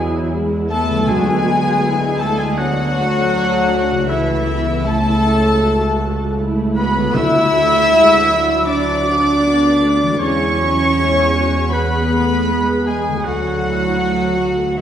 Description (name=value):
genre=cinematic, emotional film score for orchestra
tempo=79 BPM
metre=4/4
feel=rubato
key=D lydian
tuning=A4 = 436 Hz
part: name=rich studio violin section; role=melody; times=0.0-14.8 s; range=E5 to E6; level=-25 LUFS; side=left 2 dB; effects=none
part: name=small flute group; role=second line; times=0.0-14.8 s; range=E5 to E6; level=-23 LUFS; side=equal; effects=none
part: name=warm oboe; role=second line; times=0.0-14.8 s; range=E4 to E5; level=-24 LUFS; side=equal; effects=none
part: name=warm symphonic violin section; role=second line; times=0.0-14.8 s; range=E4 to E5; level=-23 LUFS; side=left 2 dB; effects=none
part: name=dark symphonic viola section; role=accompaniment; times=0.0-14.8 s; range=F#3 to G#4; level=-23 LUFS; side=right 2 dB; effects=none
part: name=warm French horn section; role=sustained chords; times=0.0-14.8 s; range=E3 to E4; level=-21 LUFS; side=left 2 dB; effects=none
part: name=concert harp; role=arpeggios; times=0.0-14.8 s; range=C#3 to D5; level=-27 LUFS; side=left 4 dB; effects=none
part: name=rich symphonic double bass section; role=bass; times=0.0-14.8 s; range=C#2 to E2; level=-23 LUFS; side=right 2 dB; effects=none
part: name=warm studio cello section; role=bass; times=0.0-14.8 s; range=E3 to E4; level=-21 LUFS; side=right 2 dB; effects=none
part: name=timpani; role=percussion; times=1.1-2.1, 7.1-8.2 s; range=D3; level=-26 LUFS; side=equal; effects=none
room=wet scoring stage reverb, RT60 1.9 s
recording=heard from further back in the room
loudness=-13 LUFS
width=side -9 dB against mid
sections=0.0-14.8 A section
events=none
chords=0.0 E; 1.1 D; 4.1 Aadd9/C#; 7.2 D; 10.2 E; 13.2 D